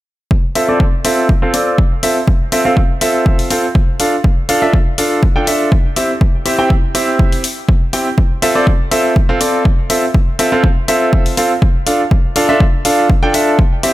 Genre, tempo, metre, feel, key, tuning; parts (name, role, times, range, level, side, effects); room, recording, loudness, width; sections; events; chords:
piano house; 122 BPM; 4/4; swing 53% on 16ths; F major; A4 = 440 Hz
electronic kick drum; drums; 0.3-13.7 s; -12 LUFS; equal; overdrive, studio reverb
clear concert grand piano; riff; 0.6-13.9 s; C4 to G5; -14 LUFS; right 1 dB; sidechain pumping, low-pass filter, dub echo
electronic hi-hat; drums; 0.6-13.9 s; -20 LUFS; left 3 dB; studio reverb
studio reverb; -11 LUFS; side -16 dB against mid
0.3-13.9 A section
0.3 Fmaj7; 4.0 Dm; 6.0 C; 8.2 Fmaj7; 11.9 Dm